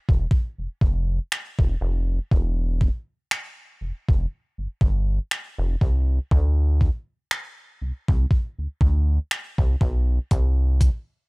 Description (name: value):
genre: contemporary R&B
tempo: 60 BPM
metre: 4/4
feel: swing 54% on 16ths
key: C major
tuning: A4 = 440 Hz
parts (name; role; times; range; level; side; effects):
- rubbery square bass; bass; 0.1-10.9 s; E1 to D2; -21 LUFS; equal; none
- gated 80s digital drum machine; drums; 0.1-11.1 s; finger snaps, hi-hat, kick drum; -20 LUFS; equal; overdrive
room: little or no reverb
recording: dry, gritty hardware recording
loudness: -20 LUFS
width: side -30 dB against mid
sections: 0.0-11.3 A section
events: break 0.0-10.3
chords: none